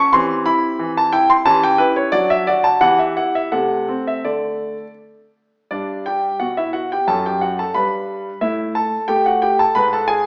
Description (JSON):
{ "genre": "classical-period piano sonatina", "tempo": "81-90 BPM", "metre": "2/4", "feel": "rubato", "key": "G major", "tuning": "A4 = 440 Hz", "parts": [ { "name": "warm grand piano", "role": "solo", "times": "0.0-10.3 s", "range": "F#2 to C#6", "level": "-18 LUFS", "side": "equal", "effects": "none" } ], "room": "wet recital hall reverb, RT60 1.2 s", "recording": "recorded in a church or concert hall, small speaker sound", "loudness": "-18 LUFS", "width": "mono", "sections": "0.0-5.7 A section; 5.7-10.3 B section", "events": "none", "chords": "0.1 C/E; 1.5 Em6; 2.1 D/F#; 2.8 Em; 3.5 Am/C; 4.2 D5; 5.7 G; 7.1 F#m; 7.7 G; 8.4 A5; 9.8 Abm" }